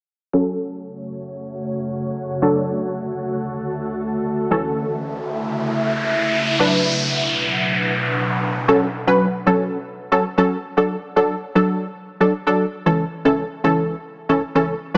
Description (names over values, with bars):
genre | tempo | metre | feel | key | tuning
pop | 115 BPM | 4/4 | straight | F# minor | A4 = 440 Hz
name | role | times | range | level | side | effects
punchy chord stab | accompaniment | 0.3-15.0 s | C#2 to B4 | -20 LUFS | equal | chorus, low-pass filter
ethereal airy pad | sustained chords | 1.0-8.7 s | C#2 to F#5 | -26 LUFS | equal | ensemble chorus, built-in reverb, low-pass filter
noise sweep | sound effects | 5.0-8.7 s | none | -24 LUFS | equal | none
room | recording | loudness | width
moderate lush hall reverb, RT60 3.0 s | small speaker sound | -20 LUFS | mono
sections
0.3-8.7 A section; 8.7-15.0 B section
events
filter sweep 0.3-8.7; noise sweep 5.0-8.7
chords
0.3 F#m; 2.4 D; 4.5 A/C#; 6.6 Bm; 8.7 F#m; 10.8 D; 12.9 A/C#